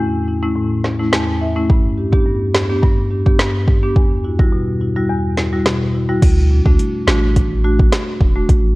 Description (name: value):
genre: dancehall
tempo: 106 BPM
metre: 4/4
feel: straight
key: D major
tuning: A4 = 436 Hz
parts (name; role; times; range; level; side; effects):
- marimba with medium mallets; accompaniment; 0.0-8.5 s; E2 to A5; -17 LUFS; equal; none
- afro-pop drum kit; drums; 0.8-8.6 s; crash cymbal, hi-hat, kick drum, rim click, snare drum; -15 LUFS; equal; overdrive
- punchy sub bass; bass; 6.2-8.8 s; E1 to D2; -15 LUFS; equal; none
room: digital ambience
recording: worn, warbling old tape, cassette tape, warbly pitch drift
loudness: -13 LUFS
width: side -21 dB against mid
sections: 0.0-6.2 A section; 6.2-8.8 B section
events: marimba fill 0.8-1.7; kick muted 5.1-6.2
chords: 0.0 A; 1.7 G; 4.0 Emadd9; 6.2 D